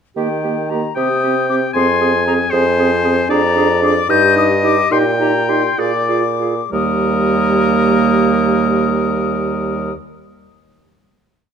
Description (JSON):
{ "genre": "quick classical-period movement for wind quintet", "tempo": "63-78 BPM (dotted quarters)", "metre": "6/8", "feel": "straight", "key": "Eb major", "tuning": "A4 = 439 Hz", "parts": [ { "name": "concert flute", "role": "melody", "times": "0.2-9.9 s", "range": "G5 to G6", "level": "-20 LUFS", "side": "left 9 dB", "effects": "none" }, { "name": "mellow French horn", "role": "accompaniment", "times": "0.2-9.9 s", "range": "G3 to F4", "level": "-20 LUFS", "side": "equal", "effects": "none" }, { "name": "warm clarinet", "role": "accompaniment", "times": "0.2-9.9 s", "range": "Bb3 to Ab4", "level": "-20 LUFS", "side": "right 8 dB", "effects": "none" }, { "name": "warm bassoon", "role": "bass", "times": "0.2-9.9 s", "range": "Eb2 to Eb3", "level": "-18 LUFS", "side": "right 2 dB", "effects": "none" }, { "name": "bright oboe", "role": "second line", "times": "1.0-9.9 s", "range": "Bb4 to Ab5", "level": "-20 LUFS", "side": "left 4 dB", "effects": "none" } ], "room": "moderate recital hall reverb, RT60 1.8 s", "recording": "close, detailed microphones", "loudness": "-13 LUFS", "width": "side -7 dB against mid", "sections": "0.2-6.7 A section; 6.7-10.4 final chord", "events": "slowing down 2.5-6.7", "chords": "0.2 Eb; 1.0 Cm; 1.8 Fm; 3.3 Bb7/F; 4.1 Eb/G; 4.9 Eb/Bb; 5.8 Bb7; 6.7 Eb", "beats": "| 0.17 0.97 | 1.75 2.53 | 3.31 4.10 | 4.92 5.80 | 6.73 7.66 | 8.58 9.51" }